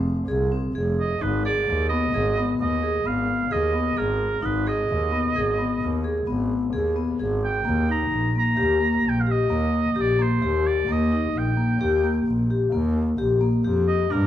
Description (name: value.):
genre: contemporary instrumental, contemporary.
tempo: 130 BPM.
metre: 7/4.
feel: straight.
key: unclear.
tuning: A4 = 440 Hz.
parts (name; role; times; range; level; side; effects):
vibraphone with medium hard mallets; arpeggios; 0.0-14.3 s; Bb3 to Ab4; -23 LUFS; left 2 dB; none.
bright double bass; bass; 0.0-14.3 s; F1 to G2; -26 LUFS; right 1 dB; none.
clear oboe; melody; 1.0-14.3 s; Bb4 to Bb5; -26 LUFS; right 5 dB; none.
room: moderate recital hall reverb, RT60 1.6 s.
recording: dark, warm production.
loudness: -20 LUFS.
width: side -12 dB against mid.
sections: 0.0-14.3 A section.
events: none.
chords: 0.0 Fm; 1.2 Abm; 7.7 Eb.